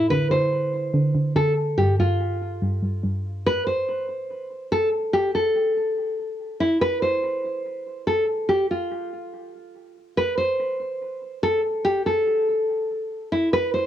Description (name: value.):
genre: hip hop.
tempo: 143 BPM.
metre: 4/4.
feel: half-time.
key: unclear.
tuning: A4 = 440 Hz.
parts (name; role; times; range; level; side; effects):
nylon-string guitar; melody; 0.0-13.9 s; E4 to C5; -22 LUFS; equal; low-pass filter, analog delay.
soft round pluck; accompaniment; 0.0-3.5 s; G2 to D3; -23 LUFS; right 1 dB; chorus, low-pass filter.
room: light reverb.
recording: home recording on cassette.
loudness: -21 LUFS.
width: side -11 dB against mid.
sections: 0.0-3.5 A section; 3.5-13.9 B section.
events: none.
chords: none.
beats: | 0.10 0.52 0.94 1.36 | 1.78 2.20 2.62 3.04 | 3.46 3.87 4.29 4.71 | 5.13 5.55 5.97 6.39 | 6.81 7.23 7.65 8.07 | 8.49 8.91 9.33 9.75 | 10.17 10.59 11.01 11.43 | 11.85 12.27 12.69 13.11 | 13.53.